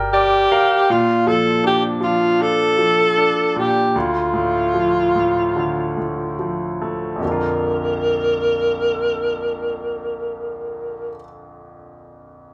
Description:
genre	pop ballad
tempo	70-79 BPM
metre	4/4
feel	straight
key	Bb major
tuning	A4 = 440 Hz
part	bright grand piano	accompaniment	0.0-12.5 s	Bb1 to G5	-25 LUFS	equal	none
part	vintage muted fingered electric bass	bass	0.0-0.5 s	G1	-33 LUFS	equal	none
part	warm alto saxophone	melody	0.1-11.1 s	F4 to Bb4	-20 LUFS	equal	none
room	moderate large studio reverb, RT60 1.1 s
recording	band playing live in one room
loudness	-19 LUFS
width	mono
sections	0.9-7.2 A section; 7.2-10.6 B section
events	grand piano fill 0.0-0.9; slowing down 0.9-7.2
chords	0.0 Gm; 0.9 Bb; 4.0 Dm; 7.2 Bb

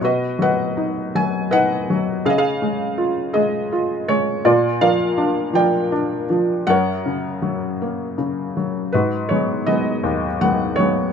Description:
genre	classical, lyrical solo piano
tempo	54 BPM (dotted quarters)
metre	6/8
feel	rubato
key	G# minor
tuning	A4 = 443 Hz
part	felt-muted upright piano	solo	0.0-11.1 s	D#2 to G#5	-17 LUFS	equal	none
room	light reverb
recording	close, detailed microphones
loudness	-17 LUFS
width	side -7 dB against mid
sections	0.0-8.9 A section; 8.9-11.1 B section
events	none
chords	0.0 B; 2.2 C#add9; 4.4 A#; 6.7 F#; 8.9 G#m7

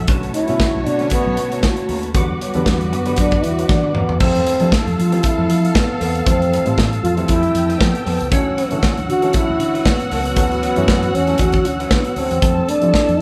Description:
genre	disco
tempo	117 BPM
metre	4/4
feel	swing 56% on 16ths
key	unclear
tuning	A4 = 440 Hz
part	warm symphonic string section	second line	0.0-13.2 s	G3 to A5	-30 LUFS	equal	none
part	barky reed electric piano	accompaniment	0.0-13.2 s	D3 to D4	-29 LUFS	equal	overdrive
part	electric guitar through a small old amp	accompaniment	0.0-13.1 s	F3 to C#5	-34 LUFS	equal	none
part	percussive tonewheel organ	sustained chords	0.0-13.2 s	F#4 to E6	-31 LUFS	equal	fast rotary speaker
part	fingered electric bass	bass	0.0-13.2 s	B1 to F3	-24 LUFS	equal	none
part	modern studio drum kit	drums	0.1-13.2 s	crash cymbal, hi-hat, kick drum, snare drum, toms	-21 LUFS	equal	none
part	breathy trombone	melody	0.3-13.2 s	F#3 to F#4	-22 LUFS	equal	none
room	moderate large studio reverb, RT60 1.2 s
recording	band playing live in one room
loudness	-17 LUFS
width	mono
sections	0.0-4.2 A section; 4.2-13.2 B section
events	drum fill 3.7-4.2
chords	0.1 Bm7; 2.1 Em9; 4.2 Fmaj7; 8.3 Dmaj9; 12.4 Fmaj7

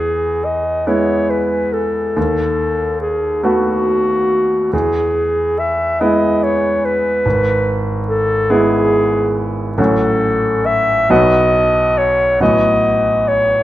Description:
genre	classical, romantic duo for clarinet and grand piano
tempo	46 BPM (dotted quarters)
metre	6/8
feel	rubato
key	E major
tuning	A4 = 442 Hz
part	warm clarinet	melody	0.0-13.6 s	F#4 to E5	-15 LUFS	left 1 dB	none
part	bright grand piano	accompaniment	0.0-13.6 s	G#1 to F#4	-17 LUFS	right 1 dB	none
room	moderate recital hall reverb, RT60 1.4 s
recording	close, detailed microphones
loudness	-13 LUFS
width	side -14 dB against mid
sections	0.0-13.6 A section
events	none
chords	0.0 E; 2.2 B7/D#; 4.7 E; 7.2 E/G#; 9.8 F#m/A; 11.1 B; 12.4 B7/A

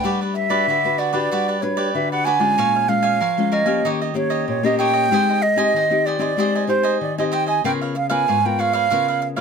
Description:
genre	samba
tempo	95 BPM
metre	4/4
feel	straight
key	unclear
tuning	A4 = 440 Hz
part	bright wooden flute	melody	0.0-9.3 s	C5 to Ab5	-19 LUFS	right 3 dB	none
part	cavaquinho	accompaniment	0.0-9.4 s	Eb4 to Ab5	-25 LUFS	right 4 dB	none
part	nylon-string guitar	accompaniment	0.0-9.4 s	G#2 to B4	-22 LUFS	left 6 dB	none
room	light reverb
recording	close, detailed microphones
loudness	-17 LUFS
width	side -6 dB against mid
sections	0.0-9.4 A section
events	none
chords	0.0 Gmaj7; 2.6 Bbm7; 3.8 Eb7; 5.1 Abmaj7; 7.6 C#13

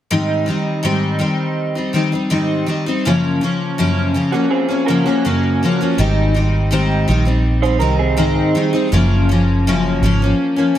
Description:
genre	indie pop, bedroom pop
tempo	82 BPM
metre	4/4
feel	straight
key	Ab major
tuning	A4 = 439 Hz
part	picked steel-string acoustic guitar	accompaniment	0.1-10.8 s	Gb2 to Eb4	-16 LUFS	left 1 dB	analog chorus, warbly pitch drift
part	electric guitar through a small old amp	second line	4.3-8.9 s	Bb3 to C5	-21 LUFS	right 7 dB	analog chorus, digital delay
part	vintage muted fingered electric bass	bass	6.0-10.3 s	Gb1 to C2	-16 LUFS	right 1 dB	none
room	light reverb, studio reverb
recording	none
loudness	-14 LUFS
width	side -11 dB against mid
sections	0.1-10.8 A section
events	none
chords	0.1 Abmaj7; 3.0 Gbmaj7; 6.0 Abmaj7; 8.9 Gbmaj7

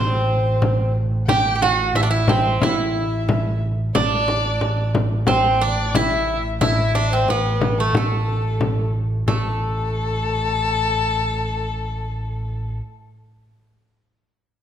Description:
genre	Turkish makam ensemble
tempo	90 BPM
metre	4/4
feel	straight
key	A makam huseyni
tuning	A4 = 438 Hz
part	Greek bouzouki	melody	0.0-12.8 s	A3 to G4	-22 LUFS	right 3 dB	none
part	dark violin	second line	0.0-12.7 s	A4 to G5	-26 LUFS	left 5 dB	none
part	overdriven picked electric bass	bass	0.0-12.8 s	A1	-23 LUFS	equal	none
part	bright double bass	drone	0.0-12.8 s	A2	-30 LUFS	right 2 dB	none
part	frame drum	percussion	0.6-9.6 s	none	-23 LUFS	left 2 dB	none
room	wet recital hall reverb, RT60 1.6 s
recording	none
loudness	-18 LUFS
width	side -9 dB against mid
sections	0.0-9.3 A section; 9.3-11.9 B section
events	none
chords	none

